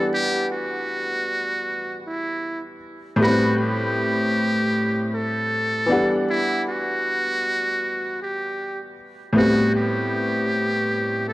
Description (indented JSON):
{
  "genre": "hip hop",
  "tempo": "78 BPM",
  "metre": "4/4",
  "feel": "swing 62% on 16ths",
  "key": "A dorian",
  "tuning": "A4 = 441 Hz",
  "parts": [
    { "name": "trumpet with metal mute", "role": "melody", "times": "0.0-11.3 s", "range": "E4 to A4", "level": "-24 LUFS", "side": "right 1 dB", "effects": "none" },
    { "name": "bright upright piano", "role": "accompaniment", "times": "0.0-11.3 s", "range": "A2 to F#5", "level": "-22 LUFS", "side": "left 1 dB", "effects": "none" }
  ],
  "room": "light reverb, studio reverb",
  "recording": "dark, warm production",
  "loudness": "-20 LUFS",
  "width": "side -17 dB against mid",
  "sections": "0.0-11.3 A section",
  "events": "none",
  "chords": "0.0 Em7; 3.2 Am9; 5.9 Em7; 9.3 Am9"
}